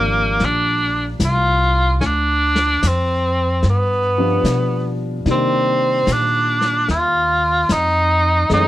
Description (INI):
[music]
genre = jazz ballad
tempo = 74 BPM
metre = 4/4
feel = swing 66% on 8ths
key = unclear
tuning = A4 = 439 Hz
[part]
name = bright tenor saxophone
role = melody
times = 0.0-8.7 s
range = Bb3 to F4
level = -17 LUFS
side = equal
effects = none
[part]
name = clear upright piano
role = accompaniment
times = 0.0-8.7 s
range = Eb3 to D4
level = -24 LUFS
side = left 2 dB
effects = none
[part]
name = upright bass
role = bass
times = 0.0-8.7 s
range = Ab1 to C3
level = -20 LUFS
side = equal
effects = none
[part]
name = vintage brush drum kit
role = drums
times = 0.4-8.7 s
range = brushed snare drum, hi-hat, snare drum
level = -24 LUFS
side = left 2 dB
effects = none
[sound]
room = light reverb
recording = none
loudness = -15 LUFS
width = side -14 dB against mid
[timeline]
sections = 0.0-8.7 A section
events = none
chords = 0.0 Gm7; 2.0 Dm7; 3.6 G7; 5.3 Cm9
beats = 0.40 1.21 | 2.01 2.82 3.63 4.45 | 5.26 6.07 6.88 7.69 | 8.50